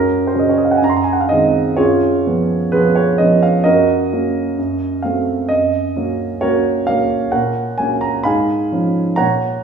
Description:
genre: classical, romantic character piece for solo piano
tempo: 64 BPM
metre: 2/4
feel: rubato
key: F# major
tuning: A4 = 440 Hz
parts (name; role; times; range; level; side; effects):
- warm concert grand piano; solo; 0.0-9.6 s; F#2 to B#5; -14 LUFS; right 2 dB; none
room: wet recital hall reverb, RT60 1.4 s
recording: heard from further back in the room, studio ambience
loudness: -14 LUFS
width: side -6 dB against mid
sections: 0.0-9.6 A section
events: none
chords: 0.0 F#; 0.8 G#7/F#; 1.8 C#7/F#; 3.6 F#; 4.6 F#dim7; 5.5 F#; 7.3 F#/A#; 8.3 C#7/G#

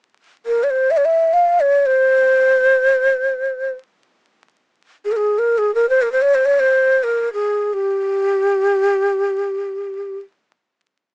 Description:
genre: Arabic maqam ensemble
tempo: free time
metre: none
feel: none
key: C maqam hijaz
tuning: A4 = 440 Hz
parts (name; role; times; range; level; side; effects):
- breathy ney; solo; 0.5-10.2 s; G4 to F5; -14 LUFS; equal; none
room: light reverb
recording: vinyl crackle, small speaker sound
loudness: -14 LUFS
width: side -35 dB against mid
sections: 0.0-11.1 A section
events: none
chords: none

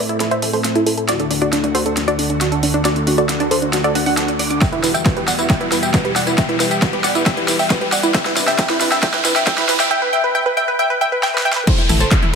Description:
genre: uplifting trance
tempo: 136 BPM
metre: 4/4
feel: straight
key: E minor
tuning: A4 = 441 Hz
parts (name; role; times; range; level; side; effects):
- wide unison pluck; melody; 0.0-12.3 s; D4 to G5; -19 LUFS; equal; sidechain pumping, dub echo
- lush unison pad; sustained chords; 0.0-12.4 s; C2 to G4; -23 LUFS; equal; chorus, sidechain pumping
- riser and downlifter; sound effects; 1.0-12.4 s; none; -26 LUFS; equal; none
- tight sequenced synth; arpeggios; 0.1-12.3 s; D4 to D6; -23 LUFS; right 3 dB; chorus, sidechain pumping, dub echo
- big-room dance drum kit; drums; 0.1-12.3 s; crash cymbal, handclaps, hi-hat, snare drum, tambourine, toms; -21 LUFS; equal; overdrive, high-pass filter on snare, small room ambience, sidechain pumping on hats, high-pass filter on hats, sidechain pumping on toms, high-pass filter on toms, sidechain pumping on perc, high-pass filter on perc, sidechain pumping on cymbals, high-pass filter on cymbals
- electronic kick drum; drums; 4.6-12.2 s; none; -18 LUFS; equal; overdrive, small room ambience
- fat analog bass; bass; 11.9-12.0 s; A1; -17 LUFS; equal; sidechain pumping
room: moderate concert hall reverb, RT60 2.4 s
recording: high-pass filter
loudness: -14 LUFS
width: side -5 dB against mid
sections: 0.0-11.7 A section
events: build-up 0.0-11.7; drum fill 0.0-9.9, 11.2-11.7; filter sweep on synth pluck 0.0-11.7; filter sweep 0.0-11.7; riser 1.0-9.9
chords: 0.0 Am; 1.1 D; 4.6 Emadd9; 8.1 Csus2; 11.7 Am

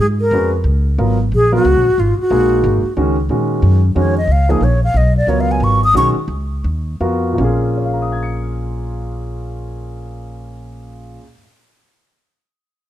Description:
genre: modal jazz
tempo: 154-182 BPM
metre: 3/4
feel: swing 62% on 8ths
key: Bb phrygian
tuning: A4 = 440 Hz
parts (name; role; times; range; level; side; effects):
- breathy mellow silver concert flute; melody; 0.0-6.1 s; F4 to Eb6; -16 LUFS; equal; plate reverb
- upright bass; bass; 0.0-11.2 s; Ab1 to Bb2; -17 LUFS; equal; none
- warm grand piano; accompaniment; 0.3-11.4 s; Bb2 to Db7; -20 LUFS; right 1 dB; none
room: light reverb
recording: dark, warm production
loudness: -13 LUFS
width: side -12 dB against mid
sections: 0.0-3.3 A section; 3.3-7.4 B section; 7.4-9.7 C section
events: flute solo 3.3-7.4; slowing down 5.3-7.4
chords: 0.0 Bbm7

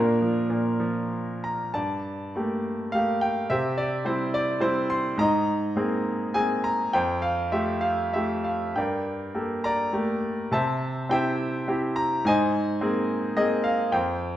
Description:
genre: classical, lyrical solo piano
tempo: 92-109 BPM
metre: 3/4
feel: rubato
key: G dorian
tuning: A4 = 438 Hz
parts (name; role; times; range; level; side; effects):
- bright concert grand piano; solo; 0.0-14.4 s; F2 to C6; -23 LUFS; equal; none
room: moderate recital hall reverb, RT60 1.4 s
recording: minimal, uncompressed stereo recording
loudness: -23 LUFS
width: side -12 dB against mid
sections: 0.0-1.7 A section; 1.7-14.4 B section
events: none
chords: 0.0 Bb; 1.7 Gmadd9; 3.5 C; 5.2 Abadd9; 6.9 Fadd9; 8.8 Gmadd9; 10.5 C; 12.3 Abadd9

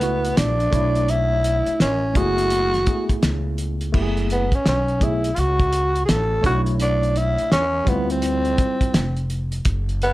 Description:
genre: hip hop, jazz-hop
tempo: 84 BPM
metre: 4/4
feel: swing 64% on 16ths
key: F# minor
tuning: A4 = 440 Hz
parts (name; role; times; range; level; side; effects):
- growling tenor saxophone; melody; 0.0-10.1 s; B3 to A4; -21 LUFS; equal; plate reverb
- tine electric piano; accompaniment; 0.0-9.0 s; G3 to C#5; -27 LUFS; equal; overdrive, fast stereo tremolo, plate reverb
- upright bass; bass; 0.0-10.1 s; F1 to E2; -23 LUFS; equal; none
- cloth-damped thuddy drum kit; drums; 0.0-10.1 s; crash cymbal, hi-hat, kick drum, snare drum; -22 LUFS; equal; none
room: light reverb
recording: none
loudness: -18 LUFS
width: side -17 dB against mid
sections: 0.0-3.9 A section; 3.9-10.1 B section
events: none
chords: 0.0 F#m11; 0.7 Bm11; 2.2 F#m11; 6.4 Bm11; 7.9 Dm11

